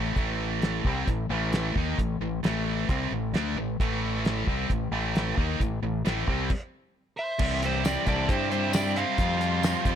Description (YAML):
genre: classic rock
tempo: 133 BPM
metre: 4/4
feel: straight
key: A minor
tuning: A4 = 441 Hz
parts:
  - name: distorted electric guitar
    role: riff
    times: 0.0-10.0 s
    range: A2 to F4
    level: -31 LUFS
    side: right 14 dB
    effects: overdrive
  - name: sludgy distorted guitar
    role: riff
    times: 0.0-10.0 s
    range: A2 to F4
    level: -31 LUFS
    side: left 12 dB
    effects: overdrive
  - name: growling fingered electric bass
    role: bass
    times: 0.0-10.0 s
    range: A1 to G2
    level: -31 LUFS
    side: equal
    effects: overdrive
  - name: cloth-damped thuddy drum kit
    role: drums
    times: 0.2-10.0 s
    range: crash cymbal, hi-hat, kick drum, snare drum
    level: -28 LUFS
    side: equal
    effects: none
  - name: overdriven slide guitar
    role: melody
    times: 7.2-10.0 s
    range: C5 to F5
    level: -30 LUFS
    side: equal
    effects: none
  - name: octave-fuzz lead guitar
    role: second line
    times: 7.2-10.0 s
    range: G4 to C5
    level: -36 LUFS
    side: right 5 dB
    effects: distortion
  - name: bright tonewheel organ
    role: sustained chords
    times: 7.4-10.0 s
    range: C4 to C5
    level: -41 LUFS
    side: equal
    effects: none
  - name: tambourine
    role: percussion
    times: 7.9-9.7 s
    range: none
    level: -39 LUFS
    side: left 12 dB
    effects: none
room: small room ambience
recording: none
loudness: -25 LUFS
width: side -9 dB against mid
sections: 0.0-7.4 A section; 7.4-10.0 B section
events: stop 6.5-7.4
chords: 0.0 Am; 6.5 N.C.; 7.4 Cadd9; 9.2 Fsus2